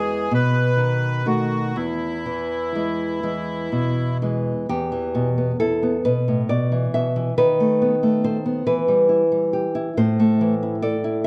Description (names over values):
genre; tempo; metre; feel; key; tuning
romantic duo for bandoneon and classical guitar; 39-48 BPM (dotted quarters); 6/8; rubato; E major, E minor from 4.7 s; A4 = 441 Hz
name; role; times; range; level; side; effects
bandoneon; melody; 0.0-4.2 s; E4 to B4; -27 LUFS; equal; none
nylon-string guitar; accompaniment; 0.0-11.3 s; E2 to E5; -22 LUFS; equal; none
room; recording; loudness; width
moderate recital hall reverb, RT60 1.5 s; dark, warm production; -21 LUFS; mono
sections
0.0-4.7 A section; 4.7-11.3 B section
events
none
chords
0.3 B7; 1.8 E; 4.7 Em; 7.4 B7/D#; 8.7 Em; 10.0 Am